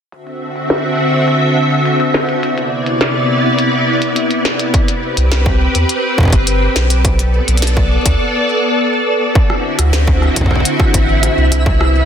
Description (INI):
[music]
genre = IDM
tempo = 104 BPM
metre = 4/4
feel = straight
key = unclear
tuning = A4 = 435 Hz
[part]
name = soft string machine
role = sustained chords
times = 0.3-12.1 s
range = C3 to E5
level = -14 LUFS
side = equal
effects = ensemble chorus
[part]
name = glitchy drum kit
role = drums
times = 0.1-11.9 s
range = hi-hat, rim click, snare drum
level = -20 LUFS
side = equal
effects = low-pass filter on hats, soft clipping on snare, low-pass filter on snare, low-pass filter on room, ping-pong delay
[part]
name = electronic kick drum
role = drums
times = 4.7-11.8 s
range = none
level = -14 LUFS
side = equal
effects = distortion
[part]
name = warm sub bass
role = bass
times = 5.2-12.0 s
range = G1 to F#2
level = -14 LUFS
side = equal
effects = none
[part]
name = twinkling granular texture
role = texture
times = 9.9-12.1 s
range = E5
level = -23 LUFS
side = right 3 dB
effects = built-in reverb
[sound]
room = light reverb, digital ambience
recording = dense, heavily limited modern master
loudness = -11 LUFS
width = side -8 dB against mid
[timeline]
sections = 0.1-9.4 A section; 9.4-12.1 B section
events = filter sweep on drum 0.1-9.4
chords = 0.1 D9; 2.4 Cmaj9; 4.7 Gadd11; 7.0 Bm7; 9.4 D9